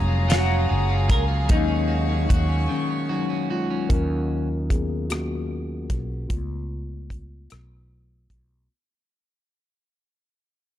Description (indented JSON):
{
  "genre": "slow six-eight R&B",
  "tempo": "50 BPM (dotted quarters)",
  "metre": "6/8",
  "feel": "straight",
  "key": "Eb minor",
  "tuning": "A4 = 440 Hz",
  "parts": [
    { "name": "semi-hollow electric guitar", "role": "melody", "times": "0.0-3.1 s", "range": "Eb4 to Db5", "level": "-28 LUFS", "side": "left 2 dB", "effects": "harmonic tremolo, tape echo" },
    { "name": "electric guitar at the edge of break-up", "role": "second line", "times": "0.0-4.5 s", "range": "Eb3 to Ab4", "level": "-31 LUFS", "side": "right 9 dB", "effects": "none" },
    { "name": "mellow tine electric piano", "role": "accompaniment", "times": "0.0-8.7 s", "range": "Eb3 to F5", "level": "-29 LUFS", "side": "left 3 dB", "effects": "slow stereo tremolo" },
    { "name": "warm studio string section", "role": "sustained chords", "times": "0.0-3.9 s", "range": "Ab4 to Db6", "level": "-31 LUFS", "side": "left 4 dB", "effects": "none" },
    { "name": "fretless electric bass", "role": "bass", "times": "0.0-8.7 s", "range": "F1 to Eb2", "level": "-24 LUFS", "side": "equal", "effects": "none" },
    { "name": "damped 70s drum kit", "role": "drums", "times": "0.3-8.5 s", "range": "hi-hat, kick drum, rim click, snare drum", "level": "-23 LUFS", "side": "equal", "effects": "none" }
  ],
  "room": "small room ambience",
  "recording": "dark, warm production",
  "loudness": "-21 LUFS",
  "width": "side -12 dB against mid",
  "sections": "0.0-3.9 A section; 3.9-8.7 B section",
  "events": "break 2.7-3.9; fade-out 3.9-8.7; tine electric piano solo 3.9-8.7",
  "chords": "0.0 Gbmaj9; 1.5 Ebm11; 3.9 Ebm7; 6.3 Dbaug7"
}